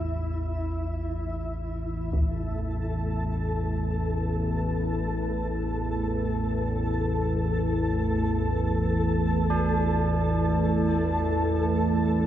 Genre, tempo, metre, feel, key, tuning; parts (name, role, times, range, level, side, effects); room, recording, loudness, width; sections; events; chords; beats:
dark ambient drone; free time; A4 = 440 Hz
tubular bells; arpeggios; 0.0-12.3 s; D4 to E4; -35 LUFS; right 2 dB; tape echo
analog drone; drone; 0.0-12.3 s; A1 to E2; -26 LUFS; equal; chorus
flickering grainy texture; texture; 0.0-12.3 s; E4 to A5; -32 LUFS; left 1 dB; built-in reverb
deep dark ambient pad; sustained chords; 2.5-12.3 s; A3 to A5; -30 LUFS; right 2 dB; chorus, built-in reverb
taiko ensemble; percussion; 2.1-2.3 s; -30 LUFS; equal
wet huge ambient reverb, RT60 7.3 s; -24 LUFS; side -11 dB against mid
0.0-2.1 A section; 2.1-12.3 B section
0.0 A5
free time